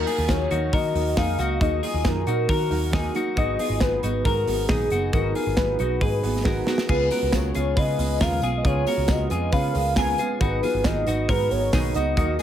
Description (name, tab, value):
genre	jangly indie pop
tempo	136 BPM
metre	4/4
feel	straight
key	unclear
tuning	A4 = 440 Hz
part	warm velvety synth lead	melody	0.0-12.4 s	Ab4 to Ab5	-26 LUFS	left 1 dB	chorus, plate reverb
part	dark upright piano	accompaniment	0.0-12.4 s	Bb3 to Cb5	-32 LUFS	right 5 dB	plate reverb
part	fingerpicked steel-string acoustic guitar	accompaniment	0.0-12.4 s	Ab2 to F4	-30 LUFS	right 4 dB	plate reverb
part	twelve-string electric guitar	arpeggios	0.0-12.4 s	Eb4 to Cb5	-29 LUFS	left 5 dB	plate reverb
part	vintage muted picked electric bass	bass	0.0-12.4 s	Gb1 to Eb3	-26 LUFS	equal	none
part	modern studio drum kit	drums	0.1-12.4 s	crash cymbal, hi-hat, kick drum, snare drum	-26 LUFS	equal	none
part	vibraphone with medium mallets	second line	2.5-3.2, 6.0-6.8, 9.5-12.4 s	Gb4 to Db5	-34 LUFS	left 3 dB	plate reverb
part	tambourine	percussion	6.9-12.4 s	none	-45 LUFS	left 11 dB	none
room	light reverb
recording	none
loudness	-20 LUFS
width	side -10 dB against mid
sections	0.0-12.4 A section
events	drum fill 6.4-6.9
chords	0.0 Ebm; 3.4 Abm7; 6.9 Db7; 10.4 Abm7